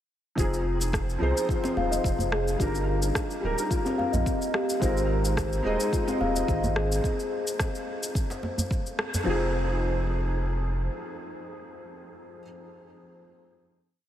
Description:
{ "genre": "organic downtempo", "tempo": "108 BPM", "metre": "4/4", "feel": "swing 53% on 16ths", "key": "F dorian", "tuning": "A4 = 440 Hz", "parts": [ { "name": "felt-muted upright piano", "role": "accompaniment", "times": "0.4-14.0 s", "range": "F3 to Eb5", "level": "-33 LUFS", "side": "right 2 dB", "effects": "ensemble chorus, sidechain pumping, diffuse ambient delay" }, { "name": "steel tongue drum", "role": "arpeggios", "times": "0.4-9.5 s", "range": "C4 to F5", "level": "-30 LUFS", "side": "left 2 dB", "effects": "diffuse ambient delay" }, { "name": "warm sub bass", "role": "bass", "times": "0.4-10.9 s", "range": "D1 to C2", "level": "-28 LUFS", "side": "equal", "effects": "sidechain pumping" }, { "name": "electronic kick drum", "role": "drums", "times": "0.4-8.8 s", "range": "none", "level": "-29 LUFS", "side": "equal", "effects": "studio reverb" }, { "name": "electronic shaker and rim click", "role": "drums", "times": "0.4-9.2 s", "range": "none", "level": "-35 LUFS", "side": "equal", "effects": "studio reverb" }, { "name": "djembe", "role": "percussion", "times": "0.8-9.2 s", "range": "none", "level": "-37 LUFS", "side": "right 1 dB", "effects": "none" }, { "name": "quartz singing bowl", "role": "texture", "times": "4.8-7.0 s", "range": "C5", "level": "-40 LUFS", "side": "left 2 dB", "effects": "none" } ], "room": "moderate huge ambient reverb, RT60 8.6 s", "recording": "dreamy mix soaked in reverb", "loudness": "-24 LUFS", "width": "side -11 dB against mid", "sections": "0.4-9.3 groove; 9.3-11.5 final chord", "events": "band accent 9.0", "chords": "0.4 Fm7; 2.6 Ebmaj7; 4.8 Abadd9; 7.0 N.C.; 9.3 Fm7" }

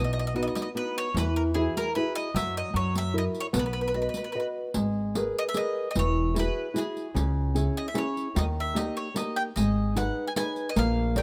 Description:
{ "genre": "italian folk, Italian serenade", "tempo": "150 BPM", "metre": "3/4", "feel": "straight", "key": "B major, G# minor from 4.8 s", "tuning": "A4 = 437 Hz", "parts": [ { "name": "bowl-back mandolin", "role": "melody", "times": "0.0-11.2 s", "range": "G#4 to G#5", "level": "-35 LUFS", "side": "equal", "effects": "none" }, { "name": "nylon-string guitar", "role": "accompaniment", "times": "0.0-11.2 s", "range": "B2 to D#5", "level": "-31 LUFS", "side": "equal", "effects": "none" }, { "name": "upright bass", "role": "bass", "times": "0.0-11.2 s", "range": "E1 to F#2", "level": "-31 LUFS", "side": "equal", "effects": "none" }, { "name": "riq", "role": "percussion", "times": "0.6-11.2 s", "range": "none", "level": "-35 LUFS", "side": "equal", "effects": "none" } ], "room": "small room ambience", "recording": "rough home demo mix", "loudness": "-28 LUFS", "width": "mono", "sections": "0.0-4.8 A section; 4.8-11.2 B section", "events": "none", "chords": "0.0 B; 1.2 Eadd9; 2.4 D#m/F#; 2.8 F#7; 3.5 B; 4.8 G#madd9; 6.0 Eadd9; 7.2 C#m; 8.4 D#; 9.6 G#m" }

